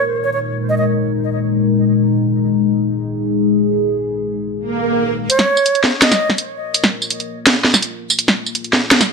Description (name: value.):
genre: half-time drum and bass.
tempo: 166 BPM.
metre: 4/4.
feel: half-time.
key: unclear.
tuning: A4 = 440 Hz.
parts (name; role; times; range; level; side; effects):
breathy bright concert flute; melody; 0.0-0.8, 5.3-6.3 s; Db5 to Eb5; -19 LUFS; right 2 dB; ping-pong delay.
dark analog pad; sustained chords; 0.0-9.1 s; Bb2 to Bb4; -17 LUFS; left 3 dB; chorus, phaser.
swell; sound effects; 4.7-5.3 s; none; -18 LUFS; right 3 dB; none.
drum and bass drum kit; drums; 5.3-9.1 s; hi-hat, snare drum, tambourine; -13 LUFS; right 1 dB; none.
room: moderate digital room reverb, RT60 0.9 s.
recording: none.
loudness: -14 LUFS.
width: side -4 dB against mid.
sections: 0.0-5.3 A section; 5.3-9.1 B section.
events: swell 4.7-5.3; build-up 5.3-9.1; filter sweep on analog synth pad 5.3-9.1.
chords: 0.0 Ab5/Bb; 5.3 Bb5.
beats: 0.24 0.60 | 0.96 1.32 1.69 2.05 | 2.41 2.77 3.13 3.49 | 3.85 4.22 4.58 4.94 | 5.30 5.66 6.02 6.38 | 6.75 7.11 7.47 7.83 | 8.19 8.55 8.91.